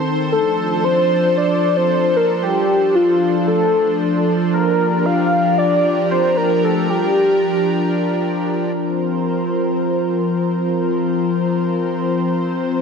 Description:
synthwave; free time; A4 = 439 Hz
warm velvety synth lead; melody; 0.0-7.7 s; F4 to F5; -16 LUFS; equal; chorus, digital delay
lush unison pad; sustained chords; 0.0-12.8 s; Eb3 to C5; -18 LUFS; left 1 dB; chorus
wet lush hall reverb, RT60 2.4 s; dense, heavily limited modern master; -15 LUFS; side -6 dB against mid
0.0-8.7 A section; 8.7-12.8 B section
0.3 Dm7; 4.5 Gm7; 8.7 Fsus4

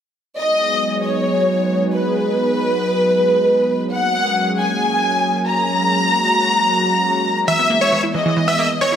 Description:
trance; 135 BPM; 4/4; straight; G# minor; A4 = 439 Hz
dark studio violin section; second line; 0.4-8.9 s; B4 to A#5; -17 LUFS; left 1 dB; tape echo
lush unison pad; sustained chords; 0.4-9.0 s; E3 to G#4; -21 LUFS; right 1 dB; chorus, vintage 12-bit sampler grit
big supersaw lead; melody; 7.5-9.0 s; C#5 to E5; -18 LUFS; equal; tape echo
wide unison pluck; second line; 7.5-9.0 s; C#5 to E5; -28 LUFS; equal
wide unison pluck; arpeggios; 7.5-9.0 s; E3 to E4; -23 LUFS; right 2 dB; cassette tape, tape echo
wet lush hall reverb, RT60 2.4 s; -15 LUFS; side -8 dB against mid
0.4-9.0 A section
0.4 G#m7; 3.9 F#add9; 7.5 Emaj7

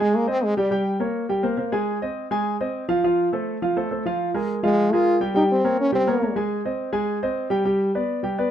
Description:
jazz; 207 BPM; 4/4; straight; A4 = 440 Hz
clear French horn; melody; 0.0-0.8, 4.6-6.3 s; G3 to F4; -20 LUFS; equal
warm concert grand piano; accompaniment; 0.0-8.5 s; F3 to Ab5; -22 LUFS; equal
moderate club reverb, RT60 0.7 s; minimal, uncompressed stereo recording; -20 LUFS; side -10 dB against mid
0.0-8.5 A section
0.0 Abmaj7; 0.7 Gdim; 1.3 C5; 1.9 Fm7; 3.0 F; 4.2 Bb5; 5.3 Bbm13/G; 6.5 Abmaj7; 7.7 G

